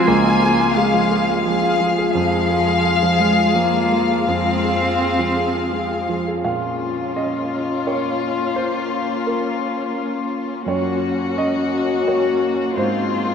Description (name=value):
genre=neoclassical piano and strings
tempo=85 BPM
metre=3/4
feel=rubato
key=Bb minor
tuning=A4 = 440 Hz
part: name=muted chamber violin section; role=melody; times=0.0-13.3 s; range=F4 to Ab5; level=-21 LUFS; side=left 5 dB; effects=none
part: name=muted cello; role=second line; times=0.0-13.3 s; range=F3 to C4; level=-23 LUFS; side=right 1 dB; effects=none
part: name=muted viola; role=accompaniment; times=0.0-13.3 s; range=C4 to Ab4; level=-27 LUFS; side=equal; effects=none
part: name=warm grand piano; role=accompaniment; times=0.0-13.3 s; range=Db2 to F5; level=-22 LUFS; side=right 2 dB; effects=none
part: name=muted chamber string section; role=sustained chords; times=0.0-13.3 s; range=F3 to F5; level=-28 LUFS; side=left 2 dB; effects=none
room=wet cathedral reverb, RT60 6.0 s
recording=in a vast, echoing space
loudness=-17 LUFS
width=side -7 dB against mid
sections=0.0-6.4 A section; 6.4-13.3 B section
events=none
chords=0.0 Db; 2.1 Fm; 6.4 Bbm; 10.7 Gb; 12.8 Fm/Ab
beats=| 0.06 0.75 1.44 | 2.14 2.84 3.55 | 4.27 5.00 5.72 | 6.44 7.15 7.86 | 8.56 9.26 9.96 | 10.67 11.37 12.07 | 12.77